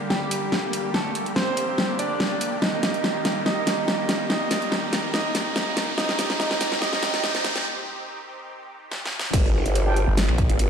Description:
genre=heavy wobble dubstep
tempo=143 BPM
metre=4/4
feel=swing 53% on 16ths, half-time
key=G minor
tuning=A4 = 439 Hz
part: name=bright concert grand piano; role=melody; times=0.0-7.6 s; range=G3 to Eb5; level=-27 LUFS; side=right 2 dB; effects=vintage 12-bit sampler grit, digital delay
part: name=supersaw chords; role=sustained chords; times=0.0-9.3 s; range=D3 to G4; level=-31 LUFS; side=equal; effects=sidechain pumping
part: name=riser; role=sound effects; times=0.1-7.7 s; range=none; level=-33 LUFS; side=equal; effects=none
part: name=dubstep drum kit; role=drums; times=0.1-10.7 s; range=crash cymbal, finger snaps, hi-hat, snare drum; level=-25 LUFS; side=equal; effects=none
part: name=growl bass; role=bass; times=9.3-10.7 s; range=G1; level=-22 LUFS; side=equal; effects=chorus, overdrive
part: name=electronic kick drum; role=drums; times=9.3-10.5 s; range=none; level=-21 LUFS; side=equal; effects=none
part: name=warm brass ensemble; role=stabs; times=9.9-10.0 s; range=D4 to G5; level=-30 LUFS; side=right 2 dB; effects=digital delay
part: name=snarling distorted saw bass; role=bass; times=10.1-10.5 s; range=G1 to Bb1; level=-21 LUFS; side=equal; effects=distortion, overdrive
room=wet digital room reverb, RT60 1.3 s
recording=played on a big sound system in a bare room, stone room reverb, high-pass filter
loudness=-21 LUFS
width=side -7 dB against mid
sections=0.0-9.3 A section; 9.3-10.7 B section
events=build-up 0.0-9.3; drum fill 0.0-7.7, 8.9-9.3; filter sweep 0.0-9.3; riser 0.1-7.7; break 7.7-9.3; drop 9.3-10.7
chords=0.0 Gm; 2.6 Eb; 6.0 Cm; 9.3 G5

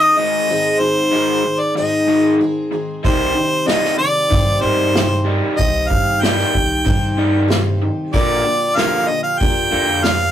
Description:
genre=folk rock and heartland rock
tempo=94 BPM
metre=4/4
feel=straight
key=C minor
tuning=A4 = 440 Hz
part: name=clear harmonica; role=melody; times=0.0-10.3 s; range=C5 to G5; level=-17 LUFS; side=equal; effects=none
part: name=picked twelve-string acoustic guitar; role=accompaniment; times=0.0-10.3 s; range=Ab2 to Ab4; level=-21 LUFS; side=left 1 dB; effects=none
part: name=crunchy overdriven guitar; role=riff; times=0.0-10.3 s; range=Ab2 to Bb3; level=-22 LUFS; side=equal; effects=none
part: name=upright bass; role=bass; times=3.0-10.3 s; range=Bb1 to G2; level=-21 LUFS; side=equal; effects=none
part: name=unplugged drum kit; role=drums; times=3.0-10.2 s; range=hi-hat, kick drum, snare drum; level=-19 LUFS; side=equal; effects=none
room=wet booth ambience, RT60 0.2 s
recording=rough rehearsal-room recording, tube saturation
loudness=-14 LUFS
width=side -10 dB against mid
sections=0.0-10.3 A section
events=none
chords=0.0 Ab; 3.0 Cm; 8.1 Bb6

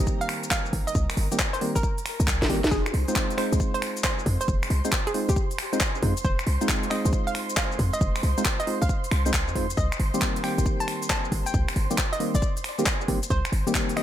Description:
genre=UK garage, two-step garage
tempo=136 BPM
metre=4/4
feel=swing 66% on 16ths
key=F minor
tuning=A4 = 440 Hz
part: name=hollow square pluck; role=melody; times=0.0-14.0 s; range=G4 to A5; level=-32 LUFS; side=right 1 dB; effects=chorus, ping-pong delay
part: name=muted studio violin section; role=sustained chords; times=0.0-14.0 s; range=Bb4 to C6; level=-38 LUFS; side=right 4 dB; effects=sidechain pumping
part: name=percussive organ stab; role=stabs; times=0.0-14.0 s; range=Eb3 to C5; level=-30 LUFS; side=equal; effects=chorus, digital delay
part: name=short 808-style bass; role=bass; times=0.0-13.6 s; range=F1 to F2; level=-25 LUFS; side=equal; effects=none
part: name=electronic kick drum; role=drums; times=0.1-13.9 s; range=none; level=-28 LUFS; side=equal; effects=none
part: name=garage drum kit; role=drums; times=0.1-14.0 s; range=finger snaps, handclaps, hi-hat, shaker, snare drum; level=-28 LUFS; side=left 1 dB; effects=none
room=light reverb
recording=none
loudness=-22 LUFS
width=side -11 dB against mid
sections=0.0-14.0 A section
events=drum fill 2.4-2.7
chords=0.0 Cm7; 2.7 Fm7; 9.8 Cm7

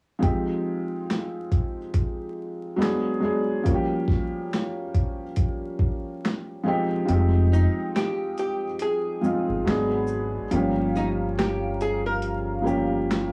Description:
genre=lo-fi hip hop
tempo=70 BPM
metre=4/4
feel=swing 58% on 16ths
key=F minor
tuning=A4 = 442 Hz
part: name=felt-muted upright piano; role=accompaniment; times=0.2-13.3 s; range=F3 to G#4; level=-28 LUFS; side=equal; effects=cassette tape
part: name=boom bap sampler-style drum kit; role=drums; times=0.2-13.3 s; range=finger snaps, hi-hat, kick drum, shaker, snare drum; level=-27 LUFS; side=equal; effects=overdrive
part: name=hollow soft pad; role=sustained chords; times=7.1-13.3 s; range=Ab3 to Eb6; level=-40 LUFS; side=equal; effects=chorus, cassette tape
part: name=deep dub fingered electric bass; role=bass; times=7.1-13.3 s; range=F1 to G#1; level=-28 LUFS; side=equal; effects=none
part: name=archtop guitar, miked and amplified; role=melody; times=7.5-13.3 s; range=Eb4 to Bb4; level=-31 LUFS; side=equal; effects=cassette tape, analog delay
room=light reverb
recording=home recording on cassette, vinyl crackle, small room ambience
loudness=-25 LUFS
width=mono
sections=0.2-7.1 A section; 7.1-13.3 B section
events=kick muted 7.1-13.3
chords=0.2 Fm9; 2.8 G#m7b5; 3.7 Gm7b5; 6.7 Fm9; 9.7 G#m7b5; 10.5 Gm7b5

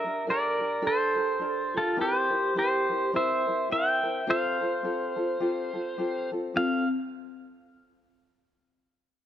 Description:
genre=Hawaiian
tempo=105 BPM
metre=4/4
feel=swing 60% on 8ths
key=F major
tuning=A4 = 439 Hz
part: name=pedal steel guitar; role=melody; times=0.0-6.9 s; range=F4 to G5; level=-27 LUFS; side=equal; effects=none
part: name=vibraphone with soft mallets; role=second line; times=0.0-6.9 s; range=C4 to E5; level=-31 LUFS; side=right 2 dB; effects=none
part: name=tenor ukulele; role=accompaniment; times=0.0-6.8 s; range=C4 to Bb4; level=-32 LUFS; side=left 2 dB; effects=none
room=moderate echo chamber reverb, RT60 2.3 s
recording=none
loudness=-25 LUFS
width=side -10 dB against mid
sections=0.0-6.6 A section; 6.6-8.8 B section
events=none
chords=0.0 Gmadd9; 2.0 C7; 4.3 Fadd9

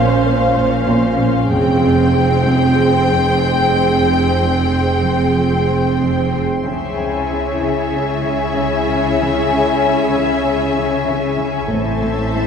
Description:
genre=cinematic, suspense film score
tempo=95 BPM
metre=4/4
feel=straight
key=unclear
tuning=A4 = 440 Hz
part: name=rich symphonic violin section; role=melody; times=0.0-12.5 s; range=E5 to G5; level=-21 LUFS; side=left 4 dB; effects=none
part: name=warm symphonic viola section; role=accompaniment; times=0.0-12.5 s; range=C4 to B#4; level=-20 LUFS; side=right 2 dB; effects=none
part: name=soft additive organ-like pad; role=sustained chords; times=0.0-12.5 s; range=C#4 to B#5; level=-22 LUFS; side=left 1 dB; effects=ensemble chorus, built-in reverb
part: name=rich symphonic cello section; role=riff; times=0.0-12.5 s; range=F2 to C#4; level=-23 LUFS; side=equal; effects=none
part: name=rich symphonic cello section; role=bass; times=0.0-12.5 s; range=F2 to C#3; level=-22 LUFS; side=right 2 dB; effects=none
part: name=warm studio double bass section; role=bass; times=0.0-12.5 s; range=F1 to C#2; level=-21 LUFS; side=right 2 dB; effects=none
part: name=warm symphonic violin section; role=second line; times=6.7-12.5 s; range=G#4 to A4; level=-22 LUFS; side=left 5 dB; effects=none
room=wet recital hall reverb, RT60 1.3 s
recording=heard from further back in the room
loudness=-14 LUFS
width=side -7 dB against mid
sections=0.0-6.7 A section; 6.7-12.5 B section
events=none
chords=0.0 A#madd9; 1.5 Fmadd9; 6.7 C#m; 11.7 Am

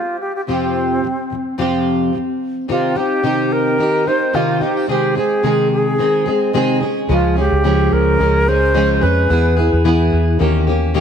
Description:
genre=pop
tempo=109 BPM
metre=4/4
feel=swing 55% on 16ths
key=unclear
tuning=A4 = 440 Hz
part: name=bright reedy alto flute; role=melody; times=0.0-9.6 s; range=C4 to C5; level=-19 LUFS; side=equal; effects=ping-pong delay
part: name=fingerpicked plugged-in steel-string acoustic guitar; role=accompaniment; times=0.0-11.0 s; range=F2 to Ab4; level=-16 LUFS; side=equal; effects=double-tracked left and right
part: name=vintage muted fingered electric bass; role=bass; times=7.1-11.0 s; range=Db2 to F2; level=-17 LUFS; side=equal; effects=none
room=light reverb, small room ambience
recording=none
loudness=-14 LUFS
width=side -8 dB against mid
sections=0.0-2.7 A section; 2.7-11.0 B section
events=none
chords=0.5 Fsus2; 2.7 Cm; 4.9 Ab/C; 6.8 Db; 9.3 E; 10.4 Eb7

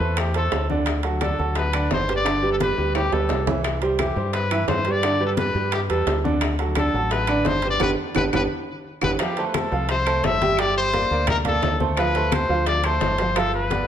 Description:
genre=latin, salsa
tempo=173 BPM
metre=4/4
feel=straight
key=unclear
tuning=A4 = 440 Hz
part: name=clear trumpet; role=melody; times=0.0-13.9 s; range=G4 to E5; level=-25 LUFS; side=left 3 dB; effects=none
part: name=clear grand piano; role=accompaniment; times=0.0-13.9 s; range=D3 to G5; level=-24 LUFS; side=right 4 dB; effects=none
part: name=fingered electric bass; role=bass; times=0.0-13.8 s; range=G1 to G2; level=-26 LUFS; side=left 1 dB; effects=none
part: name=bongos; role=percussion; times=0.0-13.9 s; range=none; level=-31 LUFS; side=left 6 dB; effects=none
part: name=congas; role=percussion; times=0.0-13.9 s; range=none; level=-31 LUFS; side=left 3 dB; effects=none
part: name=claves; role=percussion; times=0.2-13.5 s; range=none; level=-36 LUFS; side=left 6 dB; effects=none
part: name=timbales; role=percussion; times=0.2-13.9 s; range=none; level=-30 LUFS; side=right 6 dB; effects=none
room=wet large studio reverb, RT60 1.5 s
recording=none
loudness=-19 LUFS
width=side -9 dB against mid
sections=0.0-9.2 A section; 9.2-13.9 B section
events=drum fill 2.9-3.6, 8.2-9.2; band accent 7.8-9.2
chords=0.0 Am; 0.9 D; 2.3 G; 3.6 C; 5.0 G; 6.4 D; 7.8 G; 9.2 Fmaj7; 10.6 Gmadd9; 12.0 Dm7; 13.4 G7

